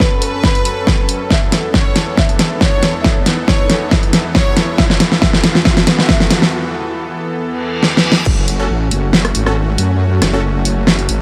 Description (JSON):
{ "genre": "heavy wobble dubstep", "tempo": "138 BPM", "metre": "4/4", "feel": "swing 54% on 16ths, half-time", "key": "F# minor", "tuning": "A4 = 443 Hz", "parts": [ { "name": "clear studio violin section", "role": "melody", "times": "0.0-6.4 s", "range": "B4 to E5", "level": "-25 LUFS", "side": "equal", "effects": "dub echo" }, { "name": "supersaw pad", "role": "sustained chords", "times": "0.0-11.2 s", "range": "E2 to A4", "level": "-24 LUFS", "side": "equal", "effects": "sidechain pumping" }, { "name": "big-room dance drum kit", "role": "drums", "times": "0.0-11.2 s", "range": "crash cymbal, hi-hat, rim click, snare drum", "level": "-16 LUFS", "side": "equal", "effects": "none" }, { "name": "electronic kick drum", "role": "drums", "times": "0.0-8.4 s", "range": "none", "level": "-18 LUFS", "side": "equal", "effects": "none" }, { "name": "riser and reverse cymbal", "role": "sound effects", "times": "0.2-8.3 s", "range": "none", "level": "-28 LUFS", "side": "equal", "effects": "none" }, { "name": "wobble bass", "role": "bass", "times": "8.3-11.2 s", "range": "F#1 to F#2", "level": "-18 LUFS", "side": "equal", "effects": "chorus, overdrive" }, { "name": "supersaw stab", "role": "stabs", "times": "8.6-10.4 s", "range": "C#4 to A4", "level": "-26 LUFS", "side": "equal", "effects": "dub echo" } ], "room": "light reverb", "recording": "none", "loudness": "-14 LUFS", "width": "mono", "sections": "0.0-8.3 A section; 8.3-11.2 B section", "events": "build-up 0.0-8.3; drum fill 0.0-6.5, 7.8-8.3; filter sweep on violin section 0.0-8.3; break 6.5-8.3; reverse cymbal 7.5-8.3; drop 8.3-11.2", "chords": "0.0 F#m; 1.3 Esus4; 8.3 F#m" }